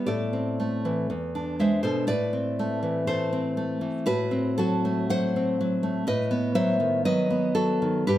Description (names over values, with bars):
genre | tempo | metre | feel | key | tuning
romantic piece for solo classical guitar | 60 BPM | 2/4 | uneven beats, rubato | unclear | A4 = 442 Hz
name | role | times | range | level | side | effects
nylon-string guitar | solo | 0.0-8.2 s | E2 to F#5 | -23 LUFS | equal | none
room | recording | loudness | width
moderate recital hall reverb, RT60 1.7 s | none | -23 LUFS | side -13 dB against mid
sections
0.0-8.2 A section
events
none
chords
0.1 Am; 1.1 E7; 2.1 Am; 4.1 F#dim/A; 6.1 B7/A